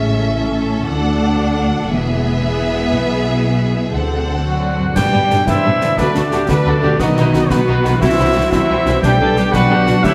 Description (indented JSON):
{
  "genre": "cinematic, heroic adventure film score",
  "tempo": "118 BPM (dotted quarters)",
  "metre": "12/8",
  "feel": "straight",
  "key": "G major from 5.0 s",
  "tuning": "A4 = 441 Hz",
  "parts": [
    { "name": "warm symphonic violin section", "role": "melody", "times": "0.0-10.1 s", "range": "D4 to F#5", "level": "-27 LUFS", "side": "equal", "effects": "none" },
    { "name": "clear symphonic violin section", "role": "second line", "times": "0.0-10.1 s", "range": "G3 to A4", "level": "-29 LUFS", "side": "equal", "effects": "none" },
    { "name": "warm symphonic viola section", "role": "accompaniment", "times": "0.0-10.1 s", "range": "B3 to B4", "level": "-24 LUFS", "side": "equal", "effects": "none" },
    { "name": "concert harp", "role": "arpeggios", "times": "0.0-10.1 s", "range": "G2 to E5", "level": "-27 LUFS", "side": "equal", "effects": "none" },
    { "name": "rich symphonic cello section", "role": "bass", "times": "0.0-10.1 s", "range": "D2 to G3", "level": "-22 LUFS", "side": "equal", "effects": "none" },
    { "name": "warm symphonic double bass section", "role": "bass", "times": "0.0-10.1 s", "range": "E1 to G2", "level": "-22 LUFS", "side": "equal", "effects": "none" },
    { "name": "clear trumpet", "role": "stabs", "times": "4.4-10.1 s", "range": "B4 to G5", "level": "-21 LUFS", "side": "equal", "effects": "none" },
    { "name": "mellow large flute ensemble", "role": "second line", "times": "4.5-10.1 s", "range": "F#4 to D5", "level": "-29 LUFS", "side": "equal", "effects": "none" },
    { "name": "warm cor anglais", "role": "second line", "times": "4.5-10.1 s", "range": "B3 to G4", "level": "-26 LUFS", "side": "equal", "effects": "none" },
    { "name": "mellow French horn section", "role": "sustained chords", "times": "5.0-10.1 s", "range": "B2 to F#4", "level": "-27 LUFS", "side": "equal", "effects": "none" },
    { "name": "concert snare drum, clash cymbals and concert bass drum", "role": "drums", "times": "5.0-10.1 s", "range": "none", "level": "-25 LUFS", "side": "equal", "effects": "none" }
  ],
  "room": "wet recital hall reverb, RT60 1.6 s",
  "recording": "none",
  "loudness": "-15 LUFS",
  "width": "mono",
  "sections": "0.0-5.0 A section; 5.0-10.1 B section",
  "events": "none",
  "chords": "0.0 A; 0.9 D; 1.9 E; 2.9 E/B; 3.9 D7; 5.0 G; 6.0 D; 7.0 B; 8.0 C; 9.0 G/B"
}